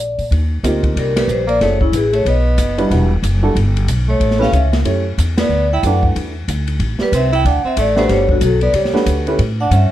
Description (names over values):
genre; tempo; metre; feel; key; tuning
jazz, small-group swing and bop; 185 BPM; 4/4; swing 61% on 8ths; D major; A4 = 437 Hz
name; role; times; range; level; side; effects
vibraphone with medium mallets; melody; 0.0-9.9 s; E4 to G5; -18 LUFS; left 2 dB; none
upright bass; bass; 0.0-9.9 s; E1 to Bb2; -16 LUFS; equal; none
open jazz drum kit; drums; 0.2-9.8 s; hi-hat, kick drum, ride cymbal, snare drum; -22 LUFS; equal; none
warm baby grand piano; accompaniment; 0.6-9.4 s; G3 to C#5; -20 LUFS; right 2 dB; none
breathy tenor saxophone; second line; 1.0-9.9 s; C#3 to E4; -22 LUFS; right 4 dB; none
room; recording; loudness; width
light reverb; dark, warm production; -13 LUFS; side -13 dB against mid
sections
0.3-9.9 A section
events
band accent 5.3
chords
0.3 Eb6; 1.6 F#m7; 2.3 B; 2.9 Em9; 4.2 A7; 5.5 D6; 6.8 Am; 7.4 D; 8.1 Gmaj7; 9.4 A7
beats
| 0.31 0.64 0.96 1.28 | 1.61 1.93 2.26 2.58 | 2.90 3.23 3.55 3.88 | 4.20 4.53 4.85 5.17 | 5.50 5.82 6.15 6.47 | 6.79 7.12 7.44 7.77 | 8.09 8.41 8.74 9.06 | 9.39 9.71